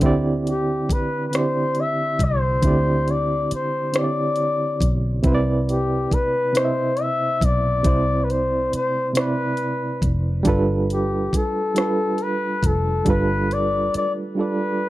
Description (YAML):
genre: slow six-eight R&B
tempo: 46 BPM (dotted quarters)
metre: 6/8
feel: straight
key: C major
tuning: A4 = 437 Hz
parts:
  - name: barky reed electric piano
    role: accompaniment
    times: 0.0-14.9 s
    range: C3 to E5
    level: -23 LUFS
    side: right 2 dB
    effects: overdrive, fast tremolo
  - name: vintage muted fingered electric bass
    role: bass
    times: 0.0-14.0 s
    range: F1 to D2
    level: -23 LUFS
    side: equal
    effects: none
  - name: smooth R&B drum kit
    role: drums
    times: 0.0-14.1 s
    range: hi-hat, kick drum, rim click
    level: -22 LUFS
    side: equal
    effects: none
  - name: warm flugelhorn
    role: melody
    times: 0.5-14.9 s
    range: G4 to E5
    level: -23 LUFS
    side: left 2 dB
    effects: none
room: little or no reverb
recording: dry, close 1970s-style studio recording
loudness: -19 LUFS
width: side -16 dB against mid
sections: 0.0-14.9 A section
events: none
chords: 0.0 D9sus4; 5.2 Cmaj9; 10.4 G9